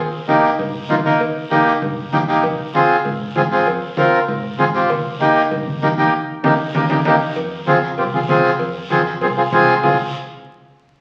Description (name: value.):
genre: latin, cumbia.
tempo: 195 BPM.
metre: 4/4.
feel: straight.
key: F minor.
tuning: A4 = 441 Hz.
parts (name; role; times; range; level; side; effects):
fingered electric bass; bass; 0.0-10.0 s; F1 to Ab2; -32 LUFS; equal; none.
congas; percussion; 0.1-9.9 s; none; -27 LUFS; equal; none.
accordion; accompaniment; 0.3-10.0 s; Bb3 to Bb4; -18 LUFS; equal; none.
guiro; percussion; 0.3-9.9 s; none; -36 LUFS; equal; none.
cowbell and timbales; percussion; 0.6-9.9 s; none; -29 LUFS; equal; none.
room: wet large studio reverb, RT60 1.2 s.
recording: very old 78 rpm record, vinyl crackle.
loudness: -17 LUFS.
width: mono.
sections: 0.0-7.4 A section; 7.4-9.8 B section; 9.8-11.0 C section.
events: band accent 6.1-7.4; drum fill 6.8-7.4.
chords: 0.0 Eb; 2.4 Fm; 4.9 Eb; 7.4 Fm.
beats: 0.28 0.59 0.90 | 1.21 1.51 1.82 2.13 | 2.44 2.75 3.05 3.36 | 3.67 3.98 4.29 4.59 | 4.90 5.21 5.52 5.83 | 6.13 6.44 6.75 7.06 | 7.37 7.67 7.98 8.29 | 8.60 8.91 9.22 9.52 | 9.83.